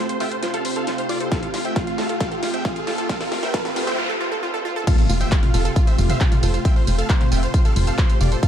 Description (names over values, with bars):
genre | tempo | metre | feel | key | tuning
uplifting trance | 135 BPM | 4/4 | straight | F major | A4 = 438 Hz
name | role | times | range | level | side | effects
big supersaw lead | melody | 0.0-8.5 s | F4 to A5 | -28 LUFS | equal | cassette tape, sidechain pumping, low-pass filter, ping-pong delay
analog string pad | sustained chords | 0.0-8.5 s | C3 to G4 | -27 LUFS | right 1 dB | ensemble chorus, sidechain pumping
wide unison pluck | arpeggios | 0.0-8.5 s | F4 to F5 | -30 LUFS | right 3 dB | sidechain pumping, ping-pong delay
riser, noise sweep and impact | sound effects | 0.1-6.7 s | none | -29 LUFS | right 1 dB | none
big-room dance drum kit | drums | 0.1-8.5 s | crash cymbal, handclaps, hi-hat, snare drum, tambourine, toms | -28 LUFS | left 1 dB | high-pass filter on snare, studio reverb, sidechain pumping on hats, high-pass filter on hats, sidechain pumping on toms, high-pass filter on toms, sidechain pumping on cymbals, high-pass filter on cymbals, sidechain pumping on perc, high-pass filter on perc
electronic kick drum | drums | 1.3-8.5 s | none | -18 LUFS | equal | studio reverb
tight sequencer bass | bass | 5.1-8.4 s | F1 | -20 LUFS | equal | tube saturation, sidechain pumping
room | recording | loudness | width
digital ambience | dark, warm production, high-pass filter | -18 LUFS | side -9 dB against mid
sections
0.0-4.9 A section; 4.9-8.5 B section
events
build-up 0.0-4.9; drum fill 0.0-4.0; riser 0.1-4.0; noise sweep 3.1-4.9; drop 4.9-8.5; impact 4.9-6.7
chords
0.0 Fadd9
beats
0.43 0.87 | 1.32 1.76 2.21 2.65 | 3.10 3.54 3.98 4.43 | 4.87 5.32 5.76 6.21 | 6.65 7.09 7.54 7.98 | 8.43